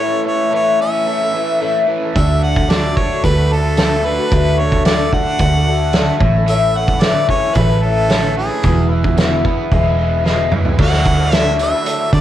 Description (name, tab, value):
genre	folk rock and heartland rock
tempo	111 BPM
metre	4/4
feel	straight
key	A major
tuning	A4 = 441 Hz
part	bright harmonica	melody	0.0-12.2 s	G#4 to F#5	-20 LUFS	right 1 dB	cassette tape
part	picked twelve-string acoustic guitar	accompaniment	0.0-12.2 s	E2 to F#4	-19 LUFS	left 7 dB	cassette tape
part	overdriven electric guitar	riff	0.0-12.2 s	E2 to F#4	-23 LUFS	right 10 dB	cassette tape
part	vintage muted fingered electric bass	bass	2.2-12.2 s	E1 to D3	-17 LUFS	right 1 dB	none
part	loose indie drum kit	drums	2.2-12.2 s	crash cymbal, hi-hat, kick drum, snare drum, toms	-17 LUFS	right 1 dB	cassette tape
room	light reverb, small room ambience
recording	home recording on cassette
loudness	-12 LUFS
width	side -12 dB against mid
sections	0.0-10.8 A section; 10.8-12.2 B section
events	drum fill 10.2-10.8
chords	0.0 A; 2.2 D; 6.2 A; 8.6 E; 10.8 Dadd9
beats	0.53 1.07 1.61 | 2.15 2.70 3.24 3.78 | 4.32 4.86 5.40 5.94 | 6.48 7.02 7.56 8.10 | 8.63 9.17 9.71 10.25 | 10.79 11.32 11.86